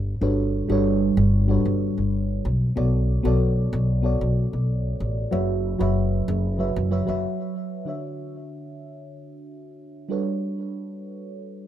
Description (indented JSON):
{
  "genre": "sunset chillout",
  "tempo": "94 BPM",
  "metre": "4/4",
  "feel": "straight",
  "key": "B minor",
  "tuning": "A4 = 440 Hz",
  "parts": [
    { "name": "upright bass", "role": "bass", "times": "0.0-7.2 s", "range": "F#1 to B1", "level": "-22 LUFS", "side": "equal", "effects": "none" },
    { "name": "mellow FM electric piano", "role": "accompaniment", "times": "0.2-11.7 s", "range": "D3 to E5", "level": "-26 LUFS", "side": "moving between left 3 dB and right 4 dB", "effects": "chorus, phaser, auto-pan, digital delay" }
  ],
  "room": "moderate studio reverb, RT60 0.6 s",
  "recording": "rough home demo mix",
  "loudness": "-21 LUFS",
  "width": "side -11 dB against mid",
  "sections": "0.0-7.9 A section; 7.9-11.7 B section",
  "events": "break 7.2-7.9",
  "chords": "0.0 Gmaj9#11; 2.4 Bm9; 5.3 F#7sus4; 7.9 Dmaj9; 10.1 Gmaj9#11"
}